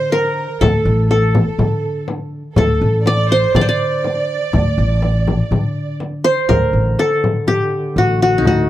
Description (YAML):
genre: Arabic maqam ensemble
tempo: 122 BPM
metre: 4/4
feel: straight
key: D maqam hijaz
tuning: A4 = 441 Hz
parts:
  - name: qanun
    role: melody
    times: 0.0-8.7 s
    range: Eb4+25c to D5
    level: -17 LUFS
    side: left 1 dB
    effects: none
  - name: rich symphonic violin section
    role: second line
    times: 0.0-6.0 s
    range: A4 to D5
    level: -23 LUFS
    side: right 4 dB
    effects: none
  - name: upright bass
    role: bass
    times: 0.0-8.7 s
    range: A1 to D3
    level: -18 LUFS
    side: equal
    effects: none
  - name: frame drum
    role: percussion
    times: 0.1-8.6 s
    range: none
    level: -19 LUFS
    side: left 2 dB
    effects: none
  - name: dark duduk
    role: drone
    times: 6.5-8.7 s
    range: D3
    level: -25 LUFS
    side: right 2 dB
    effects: stereo widening
room: small room ambience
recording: dry, close 1970s-style studio recording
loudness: -14 LUFS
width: side -13 dB against mid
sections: 0.0-6.5 A section; 6.5-8.7 B section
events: none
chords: none